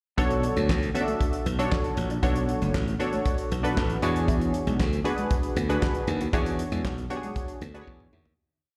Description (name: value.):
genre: early-eighties boogie funk.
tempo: 117 BPM.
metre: 4/4.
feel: straight.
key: B dorian.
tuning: A4 = 440 Hz.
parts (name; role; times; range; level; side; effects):
funky polysynth comp; accompaniment; 0.2-8.3 s; C#4 to E5; -31 LUFS; equal; chorus, slapback echo.
mellow electric guitar; riff; 0.2-8.2 s; G#3 to F#4; -38 LUFS; equal; analog chorus, slapback echo.
glassy slap bass; bass; 0.2-8.3 s; F#1 to E2; -29 LUFS; equal; none.
damped 70s drum kit; drums; 0.2-8.4 s; handclaps, hi-hat, kick drum, snare drum, toms; -31 LUFS; equal; none.
room: light reverb, studio reverb.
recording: live gig heard through the venue's PA, recital hall reverb.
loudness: -26 LUFS.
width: mono.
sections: 0.2-8.4 verse.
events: fade-out 6.3-8.4; drum fill 7.9-8.4.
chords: 0.2 Bm9; 4.0 E13.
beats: | 0.18 0.69 1.21 1.72 | 2.23 2.74 3.26 3.77 | 4.28 4.80 5.31 5.82 | 6.33 6.85 7.36 7.87.